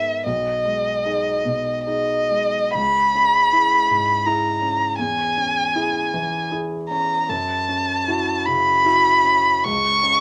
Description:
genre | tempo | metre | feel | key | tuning
classical, romantic duo for violin and grand piano | 64-82 BPM | 3/4 | rubato | unclear | A4 = 438 Hz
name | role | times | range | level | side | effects
warm violin | melody | 0.0-10.2 s | D#5 to C#6 | -20 LUFS | equal | none
warm concert grand piano | accompaniment | 0.0-10.2 s | B1 to G#4 | -29 LUFS | equal | none
room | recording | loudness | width
moderate studio reverb, RT60 0.5 s | none | -20 LUFS | mono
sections
0.0-10.2 A section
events
none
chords
0.3 G#m/B; 2.7 C#m; 5.0 C#m/E; 7.3 F#m7; 9.6 N.C.

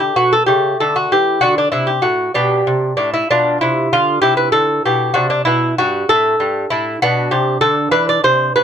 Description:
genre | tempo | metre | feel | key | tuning
classical, baroque-style dance for lute | 64 BPM (dotted quarters) | 6/8 | rubato | unclear | A4 = 440 Hz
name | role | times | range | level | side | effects
lute | solo | 0.0-8.6 s | G2 to D5 | -13 LUFS | equal | none
room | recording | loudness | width
little or no reverb | close, detailed microphones | -13 LUFS | side -8 dB against mid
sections
0.0-8.6 A section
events
none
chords
0.5 A/C#; 1.4 D5; 2.4 G/B; 3.3 Dm13/B; 4.2 C; 5.2 D5; 7.0 Bm7; 8.0 E5

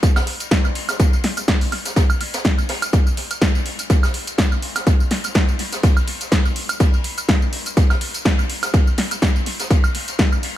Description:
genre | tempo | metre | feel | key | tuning
house | 124 BPM | 4/4 | swing 55% on 16ths | none | none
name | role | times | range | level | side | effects
electronic kick drum | drums | 0.0-10.3 s | none | -16 LUFS | equal | overdrive, studio reverb
jazz brush drum kit | drums | 0.0-10.6 s | ride cymbal, snare drum | -29 LUFS | left 2 dB | sidechain pumping on cymbals, high-pass filter on cymbals, studio reverb, high-pass filter on snare, high-pass filter on room, tape echo
punchy analog drum machine | drums | 0.0-10.5 s | hi-hat, snare drum, tambourine, woodblock | -22 LUFS | equal | overdrive, studio reverb, tape echo
room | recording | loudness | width
small room ambience | echo-heavy mix | -16 LUFS | side -13 dB against mid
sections
0.0-10.6 A section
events
none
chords
none

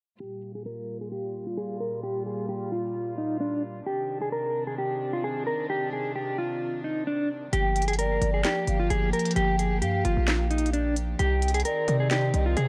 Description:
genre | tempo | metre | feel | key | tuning
hip hop, trap | 131 BPM | 4/4 | half-time | G phrygian | A4 = 439 Hz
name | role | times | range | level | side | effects
mellow electric guitar | melody | 0.2-12.7 s | D4 to Bb4 | -31 LUFS | equal | tremolo, low-pass filter, tape echo
dark studio string section | sustained chords | 0.2-12.7 s | Bb2 to G4 | -37 LUFS | equal | low-pass filter
mellow hollow polished pan flute | second line | 7.5-12.6 s | D5 to G5 | -35 LUFS | equal | tape echo
hard-hitting 808-style bass | bass | 7.5-12.7 s | G1 to C3 | -28 LUFS | equal | none
trap drum kit | drums | 7.5-12.7 s | handclaps, hi-hat, snare drum | -33 LUFS | equal | vintage 12-bit sampler grit
room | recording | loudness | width
light reverb, studio reverb | echo-heavy mix | -27 LUFS | mono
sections
0.2-7.5 A section; 7.5-12.7 B section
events
filter sweep 0.2-7.5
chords
0.2 Gm7; 3.9 Cmadd9; 7.5 Gm7; 11.2 Cmadd9

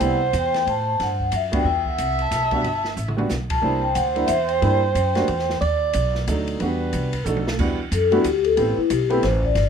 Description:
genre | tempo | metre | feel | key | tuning
jazz, small-group swing and bop | 182 BPM | 3/4 | swing 61% on 8ths | E minor | A4 = 440 Hz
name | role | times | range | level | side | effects
vibraphone with soft mallets | melody | 0.0-5.6, 7.9-9.7 s | E4 to A5 | -22 LUFS | left 6 dB | none
warm alto saxophone | second line | 0.0-7.6 s | A4 to E5 | -25 LUFS | right 8 dB | none
warm baby grand piano | accompaniment | 0.0-9.2 s | F#3 to G4 | -24 LUFS | right 2 dB | none
upright bass | bass | 0.0-9.7 s | G1 to A2 | -25 LUFS | equal | none
open jazz drum kit | drums | 0.0-9.7 s | crash cymbal, hi-hat, kick drum, ride cymbal, snare drum, toms | -30 LUFS | equal | none
room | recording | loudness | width
light reverb | minimal, uncompressed stereo recording | -19 LUFS | side -7 dB against mid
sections
0.0-7.6 A section; 7.6-9.7 B section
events
band accent 1.5, 3.5; drum fill 3.0-3.3, 7.3-7.6; vibraphone solo 7.6-9.7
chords
0.0 Am7; 1.7 Em; 3.6 C7; 5.6 B7#9; 6.6 Em9; 7.3 B7#9; 7.6 Em9; 8.6 Am7

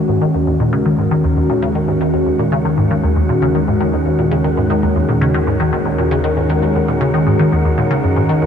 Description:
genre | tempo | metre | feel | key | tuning
ambient, sequencer-driven space music | 117 BPM | 4/4 | straight | Eb minor | A4 = 440 Hz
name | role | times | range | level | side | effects
sweeping resonant pad | sustained chords | 0.0-8.5 s | Eb3 to Bb4 | -16 LUFS | equal | chorus
resonant blip pluck | riff | 0.0-8.5 s | Eb2 to Eb3 | -16 LUFS | left 1 dB | phaser, wide subtle chorus, tape echo
analog drone | bass | 0.8-8.5 s | Eb2 | -24 LUFS | equal | chorus
wind-like tuned noise texture | texture | 1.2-8.5 s | Gb5 | -33 LUFS | right 1 dB | built-in reverb
room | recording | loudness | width
wet huge ambient reverb, RT60 8.5 s | dark, warm production | -13 LUFS | side -8 dB against mid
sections
0.0-8.5 A section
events
fade-in on synth texture 0.0-8.5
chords
0.0 Ebm

